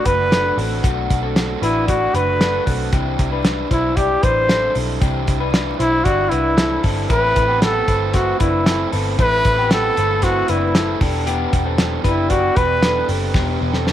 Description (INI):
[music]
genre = jangly indie pop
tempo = 115 BPM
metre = 4/4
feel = straight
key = unclear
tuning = A4 = 440 Hz
[part]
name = breathy trumpet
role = melody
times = 0.0-13.1 s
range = E4 to C5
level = -18 LUFS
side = equal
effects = slapback echo
[part]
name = overdriven electric guitar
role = accompaniment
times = 0.0-13.9 s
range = A2 to B4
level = -26 LUFS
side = right 10 dB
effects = none
[part]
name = electric guitar through a small old amp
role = arpeggios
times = 0.0-13.9 s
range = A3 to D5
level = -24 LUFS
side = left 10 dB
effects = slapback echo
[part]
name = vintage muted picked electric bass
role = bass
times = 0.1-13.9 s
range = E1 to C2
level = -23 LUFS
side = equal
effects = none
[part]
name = cloth-damped thuddy drum kit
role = drums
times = 0.1-13.9 s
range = hi-hat, kick drum, snare drum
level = -20 LUFS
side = equal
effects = none
[sound]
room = moderate spring reverb, RT60 1.7 s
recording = 1960s-style stereo with parts hard left and right, vinyl crackle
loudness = -15 LUFS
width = side -11 dB against mid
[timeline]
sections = 0.0-13.9 A section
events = drum fill 13.3-13.9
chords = 0.0 Bm7; 2.9 Cadd9; 7.1 Amadd9; 11.0 Em7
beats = 0.32 | 0.84 1.36 1.88 2.40 | 2.93 3.45 3.97 4.49 | 5.02 5.54 6.06 6.58 | 7.10 7.62 8.15 8.67 | 9.19 9.71 10.23 10.75 | 11.27 11.79 12.31 12.83 | 13.35 13.87